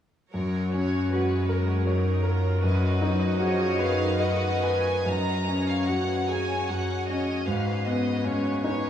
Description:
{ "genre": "classical", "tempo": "76 BPM", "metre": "3/4", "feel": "uneven beats, rubato", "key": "F# major", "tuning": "A4 = 440 Hz", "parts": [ { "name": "clear grand piano", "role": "melody", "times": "0.3-8.9 s", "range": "F#2 to D#5", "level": "-26 LUFS", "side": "left 1 dB", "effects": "none" }, { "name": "clear studio violin section", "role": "second line", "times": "0.3-4.8 s", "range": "A#4 to D#5", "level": "-34 LUFS", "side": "equal", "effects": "none" }, { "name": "warm studio viola section", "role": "accompaniment", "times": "0.3-8.9 s", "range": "D#3 to C#5", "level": "-33 LUFS", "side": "right 1 dB", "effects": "none" }, { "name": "warm studio cello section", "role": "bass", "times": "0.3-8.9 s", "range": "F#2 to G#2", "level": "-29 LUFS", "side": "equal", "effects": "none" }, { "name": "rich studio violin section", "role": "melody", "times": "3.8-8.9 s", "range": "C#5 to A#5", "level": "-32 LUFS", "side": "equal", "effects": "none" } ], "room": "wet huge ambient reverb, RT60 6.9 s", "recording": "in a vast, echoing space, studio reverb", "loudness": "-23 LUFS", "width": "side -10 dB against mid", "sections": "0.3-5.1 A section; 5.1-8.9 B section", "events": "none", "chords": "0.3 F#; 5.1 F#5; 7.5 C#5/G#" }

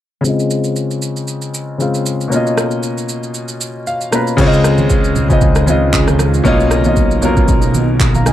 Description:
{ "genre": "amapiano", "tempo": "116 BPM", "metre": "4/4", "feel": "swing 55% on 16ths", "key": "unclear", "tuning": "A4 = 440 Hz", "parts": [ { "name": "warm concert grand piano", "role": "accompaniment", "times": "0.2-8.3 s", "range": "B2 to A#5", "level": "-15 LUFS", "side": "left 2 dB", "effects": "low-pass filter" }, { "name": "deep house drum kit", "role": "drums", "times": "0.2-8.3 s", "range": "crash cymbal, handclaps, kick drum, rim click, shaker", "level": "-16 LUFS", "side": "right 1 dB", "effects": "overdrive" }, { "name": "granular cloud pad", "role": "sustained chords", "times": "5.3-8.3 s", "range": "B2 to F4", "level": "-22 LUFS", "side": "equal", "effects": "built-in reverb" }, { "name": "fat analog bass", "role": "bass", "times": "4.4-8.3 s", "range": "B1 to Db2", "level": "-16 LUFS", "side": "equal", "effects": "none" }, { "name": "congas", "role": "percussion", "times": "4.4-8.3 s", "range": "none", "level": "-22 LUFS", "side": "right 5 dB", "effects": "none" } ], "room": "digital ambience", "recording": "dark, warm production", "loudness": "-12 LUFS", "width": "side -12 dB against mid", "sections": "0.2-4.4 A section; 4.4-8.3 B section", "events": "filter sweep on grand piano 0.2-4.4; grand piano fill 3.6-4.4", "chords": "0.2 Dbmaj7; 2.3 Bmaj9#11; 4.4 Dbmaj7; 6.5 Bmaj9#11" }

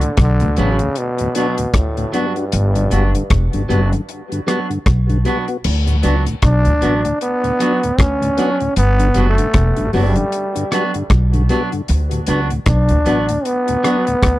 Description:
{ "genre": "roots reggae", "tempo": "77 BPM", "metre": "4/4", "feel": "swing 59% on 16ths", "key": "D major", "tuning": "A4 = 440 Hz", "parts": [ { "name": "growling trombone", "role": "melody", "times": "0.0-14.4 s", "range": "G2 to D4", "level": "-19 LUFS", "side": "equal", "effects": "dub echo" }, { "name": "mellow tonewheel organ", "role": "accompaniment", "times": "0.0-14.2 s", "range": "D2 to F#4", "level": "-23 LUFS", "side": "left 2 dB", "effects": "chorus vibrato, slow rotary speaker, dub echo" }, { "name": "damped 70s drum kit", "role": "drums", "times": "0.0-14.4 s", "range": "crash cymbal, hi-hat, kick drum, rim click", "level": "-18 LUFS", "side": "equal", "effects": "none" }, { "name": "upright bass", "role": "bass", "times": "0.2-14.4 s", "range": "E1 to D2", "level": "-16 LUFS", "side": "equal", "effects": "none" }, { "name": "clean electric guitar", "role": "accompaniment", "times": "0.6-14.0 s", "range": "F#3 to F#4", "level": "-24 LUFS", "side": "right 3 dB", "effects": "dub echo" } ], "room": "small room ambience", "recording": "dry, close 1970s-style studio recording", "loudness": "-14 LUFS", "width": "side -16 dB against mid", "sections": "0.0-5.6 A section; 5.6-14.4 B section", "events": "none", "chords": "0.0 D6; 2.5 Gmaj7; 5.6 D6; 8.8 Gmaj7; 11.9 D6" }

